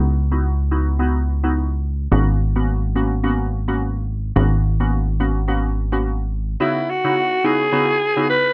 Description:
afrobeats; 107 BPM; 4/4; swing 58% on 16ths; C# dorian; A4 = 445 Hz
glassy wavetable pluck; accompaniment; 0.0-8.3 s; C#3 to F#4; -25 LUFS; equal; chorus, low-pass filter
plucky analog bass; bass; 0.0-6.6 s; G#1 to C#2; -21 LUFS; equal
growling alto saxophone; melody; 6.6-8.5 s; E4 to B4; -20 LUFS; equal
little or no reverb; dark, warm production; -20 LUFS; mono
0.0-6.6 A section; 6.6-8.5 B section
filter sweep on synth pluck 0.0-6.6
0.0 C#m11; 2.1 G#m11; 6.6 C#m11

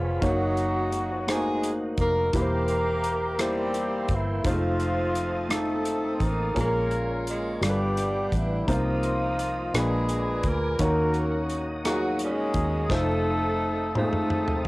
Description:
slow gospel; 57 BPM (dotted quarters); 6/8; straight; A4 = 439 Hz
mellow horn section; melody; 0.0-14.7 s; A3 to Cb5; -28 LUFS; left 1 dB; cassette tape
warm tenor saxophone; melody; 0.0-14.7 s; E3 to C4; -34 LUFS; right 2 dB; cassette tape
warm baby grand piano; accompaniment; 0.0-14.7 s; G2 to Db5; -28 LUFS; equal; cassette tape
tonewheel organ; sustained chords; 0.0-14.7 s; Ab4 to Eb6; -40 LUFS; right 1 dB; slow rotary speaker, chorus vibrato, cassette tape
vintage muted fingered electric bass; bass; 0.0-14.6 s; E1 to Eb2; -30 LUFS; equal
natural country drum kit; drums; 0.2-14.7 s; hi-hat, kick drum, rim click, snare drum, toms; -30 LUFS; equal; cassette tape
studio reverb; home recording on cassette; -23 LUFS; side -21 dB against mid
0.0-14.7 A section
drum fill 12.9-14.7
0.2 Gb6; 2.3 C7/E; 4.5 F7; 6.6 Bbm7; 7.6 G7; 8.7 Bbsus24/C; 9.7 Bb7b9; 10.8 Ebm7; 12.9 F7

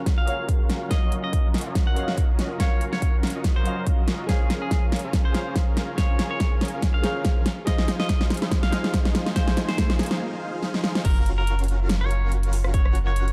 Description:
future bass; 142 BPM; 4/4; swing 55% on 16ths, half-time; A4 = 440 Hz
glassy digital keys; accompaniment; 0.0-11.1 s; Gb3 to F5; -37 LUFS; equal; chorus, sidechain pumping, delay
dense compressed supersaw; riff; 0.0-13.3 s; Db4 to Ab5; -35 LUFS; equal; sidechain pumping, low-pass filter
big-room dance drum kit; drums; 0.1-13.3 s; crash cymbal, hi-hat, rim click, snare drum; -30 LUFS; equal
electronic kick drum; drums; 0.1-12.8 s; -24 LUFS; equal
clean electric guitar; melody; 0.2-13.3 s; Ab4 to Gb5; -36 LUFS; equal; sidechain pumping, delay
riser; sound effects; 7.1-10.2 s; -40 LUFS; equal
saturated sub bass; bass; 11.1-13.3 s; Gb1; -25 LUFS; equal; sidechain pumping
light reverb, digital ambience; dark, warm production; -23 LUFS; mono
0.0-11.1 A section; 11.1-13.3 B section
build-up 0.0-11.1; drum fill 0.0-10.2, 10.6-11.1; filter sweep on supersaw synth 0.0-11.1; break 10.2-11.1; drop 11.1-13.3
0.0 Gbmaj7; 0.9 Ebm9; 4.3 Bbm7/Db; 7.5 Fm7; 11.1 Gbmaj7

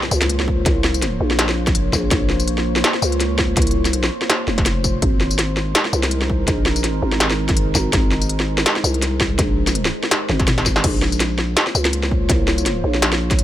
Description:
half-time drum and bass; 165 BPM; 4/4; swing 56% on 16ths, half-time; Bb minor; A4 = 442 Hz
deep dark ambient pad; sustained chords; 0.0-13.4 s; Ab3 to Db5; -26 LUFS; equal; chorus, built-in reverb, sidechain pumping
industrial drum kit; drums; 0.0-13.4 s; crash cymbal, hi-hat, snare drum, tambourine, toms; -19 LUFS; equal
impact; sound effects; 0.0-0.7 s; -34 LUFS; equal
growling 808-style bass; bass; 0.1-13.4 s; F1 to Db2; -20 LUFS; equal; tube saturation
electronic kick drum; drums; 0.5-13.4 s; -20 LUFS; equal
little or no reverb; faint mains hum; -16 LUFS; side -12 dB against mid
0.0-13.4 A section
impact 0.0-0.7; drum fill 10.3-10.8
0.0 Bbmadd9; 5.0 Ab; 10.8 Bbmadd9

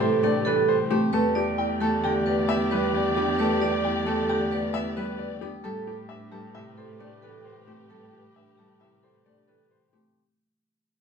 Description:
classical, minimalist pattern music; 133 BPM; 5/4; straight; A minor; A4 = 439 Hz
clear grand piano; melody; 0.0-10.2 s; G4 to G5; -30 LUFS; left 6 dB
warm clarinet; second line; 0.0-9.9 s; G4; -31 LUFS; right 3 dB
Celtic harp; accompaniment; 0.0-10.2 s; C3 to B3; -28 LUFS; equal
dark symphonic string section; sustained chords; 0.0-9.9 s; G4 to D5; -34 LUFS; left 6 dB
vibraphone with medium hard mallets; arpeggios; 0.0-10.2 s; C4 to D5; -28 LUFS; right 6 dB
warm cello; bass; 0.0-10.0 s; E2 to A2; -34 LUFS; right 3 dB
light reverb; minimal, uncompressed stereo recording; -22 LUFS; side -6 dB against mid
0.0-10.2 A section
fade-out 0.0-10.2
0.0 Am11; 1.1 Em7; 5.6 Am11

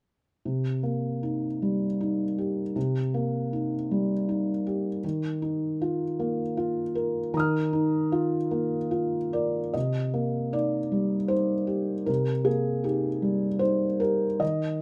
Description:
neoclassical minimalist piano; 78 BPM; 3/4; rubato; C minor; A4 = 440 Hz
felt-muted upright piano; solo; 0.5-14.8 s; C3 to F6; -27 LUFS; equal
light reverb; -27 LUFS; mono
0.5-9.8 A section; 9.8-14.8 B section
0.5 Cm7; 5.0 Ebsus2; 9.8 Cm7

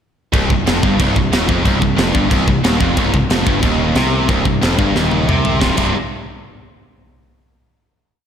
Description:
heavy metal; 182 BPM; 4/4; straight; C minor; A4 = 439 Hz
heavy high-gain guitar; riff; 0.3-5.9 s; C2 to C3; -16 LUFS; equal; distortion, slapback echo
fuzz picked electric bass; bass; 0.3-5.9 s; C1 to C2; -20 LUFS; equal; overdrive
tight metal drum kit; drums; 0.3-5.9 s; china cymbal, crash cymbal, kick drum, snare drum, toms; -18 LUFS; equal
moderate lush hall reverb, RT60 1.8 s, studio reverb; big arena sound; -13 LUFS; side -8 dB against mid
0.3-5.6 riff; 5.6-6.9 final chord
drum fill 5.0-5.6
0.3 Cm; 5.6 C5

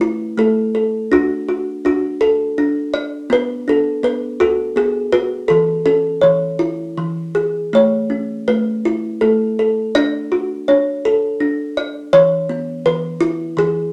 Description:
children's music, lullaby; 82 BPM; 3/4; rubato; A major; A4 = 439 Hz
kalimba; solo; 0.0-13.9 s; E3 to D5; -17 LUFS; equal
wet studio reverb, RT60 0.6 s; -17 LUFS; mono
0.0-13.9 A section
0.0 A; 1.1 D; 3.3 Bm; 5.5 A/E; 7.0 E; 7.7 A; 9.9 D; 12.1 E

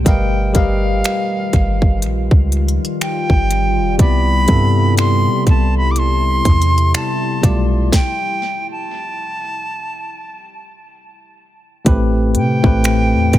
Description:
contemporary R&B; 61 BPM; 4/4; swing 58% on 16ths; A4 = 440 Hz
bell-like tine electric piano; accompaniment; 0.0-13.4 s; A2 to F5; -20 LUFS; left 2 dB; medium stereo tremolo
clean 808-style bass; bass; 0.0-13.4 s; F1 to C3; -16 LUFS; equal
bright reedy silver concert flute; melody; 0.1-13.4 s; F5 to D6; -21 LUFS; right 1 dB; tape echo
deep dark ambient pad; sustained chords; 0.1-13.4 s; C3 to B4; -25 LUFS; left 1 dB; chorus, built-in reverb
trap drum kit; drums; 0.1-13.4 s; finger snaps, hi-hat, kick drum, snare drum; -15 LUFS; equal
digital ambience; echo-heavy mix; -13 LUFS; side -13 dB against mid
0.0-11.9 A section; 11.9-13.4 B section
stop 7.9-11.9
0.1 G7alt; 4.0 Cmaj7; 7.4 G9/B; 11.9 Am9

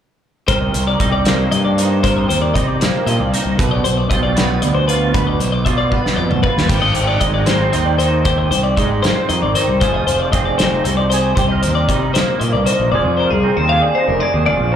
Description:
math rock and midwest emo; 77 BPM (dotted quarters); 6/8; straight; C minor; A4 = 440 Hz
electric guitar through a small old amp; accompaniment; 0.5-14.8 s; G2 to B4; -21 LUFS; right 8 dB; ensemble chorus, slapback echo
twelve-string electric guitar; arpeggios; 0.5-14.8 s; Ab4 to F5; -18 LUFS; left 4 dB; analog delay, slapback echo
fuzz fingered electric bass; bass; 0.5-14.8 s; F1 to C3; -18 LUFS; equal; overdrive
loose indie drum kit; drums; 0.5-12.8 s; crash cymbal, hi-hat, kick drum, snare drum, toms; -20 LUFS; equal
light reverb; live gig heard through the venue's PA, club reverb; -13 LUFS; side -9 dB against mid
0.5-12.9 A section; 12.9-14.8 B section
drum fill 5.9-6.7
0.5 Cm7; 3.6 G7/B; 6.7 Abmaj7; 9.8 Fm7; 11.4 Cm7; 12.9 Fm7

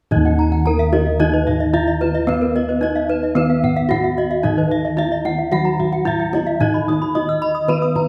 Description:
Balinese gamelan; 111 BPM; 4/4; straight; Eb pelog; A4 = 440 Hz
gamelan-type bronze metallophone; melody; 0.1-8.1 s; Cb4 to Eb5; -22 LUFS; equal
gamelan-type bronze metallophone; accompaniment; 0.1-8.1 s; Eb3 to Cb4; -28 LUFS; equal
gamelan-type bronze metallophone; arpeggios; 0.1-8.1 s; Cb5 to Eb6; -26 LUFS; equal
gamelan-type bossed gongs; bass; 0.1-8.1 s; Eb2 to Cb5; -25 LUFS; equal
kendang; percussion; 0.1-8.1 s; -28 LUFS; equal
gamelan-type bronze metallophone; arpeggios; 0.3-8.0 s; Bb4 to Fb6+35c; -28 LUFS; equal
wet recital hall reverb, RT60 1.6 s; -18 LUFS; mono
0.1-8.1 A section

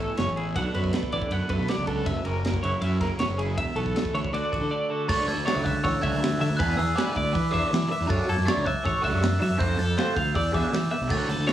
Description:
math rock and midwest emo; 159 BPM; 4/4; straight; D lydian; A4 = 439 Hz
twelve-string electric guitar; accompaniment; 0.0-6.6 s; D2 to F#4; -32 LUFS; right 6 dB
twelve-string electric guitar; arpeggios; 0.0-11.5 s; G#4 to F#5; -30 LUFS; left 1 dB; tremolo, plate reverb, tape echo
fuzz fingered electric bass; bass; 0.0-11.5 s; E1 to F#3; -28 LUFS; equal; overdrive
crisp fusion drum kit; drums; 0.2-11.5 s; crash cymbal, hi-hat, kick drum, ride cymbal, snare drum; -30 LUFS; equal
glockenspiel with rubber mallets; melody; 4.5-11.5 s; D6 to A6; -30 LUFS; right 1 dB
raw garage guitar; riff; 5.1-11.5 s; E3 to G#4; -30 LUFS; right 2 dB; overdrive, phaser
light reverb; worn, warbling old tape, cassette tape, warbly pitch drift, studio ambience; -23 LUFS; side -11 dB against mid
0.0-5.1 A section; 5.1-11.5 B section
0.0 A; 0.6 Bm7; 2.1 F#7; 3.6 E7sus4; 4.3 D; 5.1 Dmaj9; 6.6 E5; 8.1 Dmaj9; 9.6 F69; 10.3 E5

